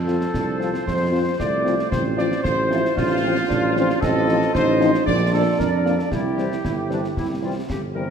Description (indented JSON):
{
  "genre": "military-style march for wind band",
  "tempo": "114 BPM",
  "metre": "2/4",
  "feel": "straight",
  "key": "F major",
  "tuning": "A4 = 440 Hz",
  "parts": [
    { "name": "warm trumpet section", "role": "melody", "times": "0.0-7.7 s", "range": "F4 to D5", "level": "-24 LUFS", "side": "left 1 dB", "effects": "none" },
    { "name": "clear woodwind section", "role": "second line", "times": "0.0-8.1 s", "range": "D4 to Eb5", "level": "-28 LUFS", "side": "right 1 dB", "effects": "none" },
    { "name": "warm tuba", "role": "bass", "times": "0.0-8.1 s", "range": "G1 to F2", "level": "-24 LUFS", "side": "right 3 dB", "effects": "none" },
    { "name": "warm French horn section", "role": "accompaniment", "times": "0.1-8.0 s", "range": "E3 to F4", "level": "-27 LUFS", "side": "left 5 dB", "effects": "none" },
    { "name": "concert snare drum, concert bass drum and clash cymbals", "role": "drums", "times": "0.1-7.9 s", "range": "none", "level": "-29 LUFS", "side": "left 1 dB", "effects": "none" },
    { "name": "warm euphonium", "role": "second line", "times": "0.3-8.0 s", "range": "A3 to F4", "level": "-27 LUFS", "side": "right 4 dB", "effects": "none" }
  ],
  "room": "moderate concert hall reverb, RT60 2.2 s",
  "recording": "none",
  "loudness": "-18 LUFS",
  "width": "side -7 dB against mid",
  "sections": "0.0-8.1 A section",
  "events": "none",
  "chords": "0.0 F; 1.9 F/A; 4.0 F7/A; 5.1 Bb; 6.1 C",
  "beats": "0.34 | 0.86 1.39 | 1.91 2.44 | 2.97 3.49 | 4.02 4.54 | 5.07 5.59 | 6.12 6.64 | 7.17 7.69"
}